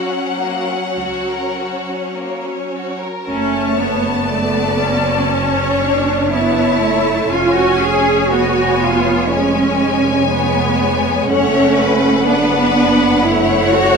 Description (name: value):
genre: classical, slow romantic movement for string orchestra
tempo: 51-63 BPM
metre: 4/4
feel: rubato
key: F# major, F# minor from 3.3 s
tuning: A4 = 440 Hz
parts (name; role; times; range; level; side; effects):
- rich studio violin section; melody; 0.0-14.0 s; F#5 to A5; -22 LUFS; left 6 dB; none
- clear studio violin section; second line; 0.0-14.0 s; A#3 to D5; -20 LUFS; left 5 dB; none
- rich studio viola section; accompaniment; 0.0-14.0 s; F#3 to C#4; -19 LUFS; right 2 dB; none
- warm studio cello section; bass; 1.0-14.0 s; C#2 to G#4; -17 LUFS; right 2 dB; none
- rich studio double bass section; bass; 3.3-14.0 s; E#1 to F#1; -22 LUFS; right 4 dB; none
room: wet recital hall reverb, RT60 1.5 s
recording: minimal, uncompressed stereo recording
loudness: -13 LUFS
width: side -5 dB against mid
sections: 0.0-3.3 A section; 3.3-14.0 B section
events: none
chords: 0.0 F#; 3.3 F#m; 7.3 C#7/E#; 11.3 F#m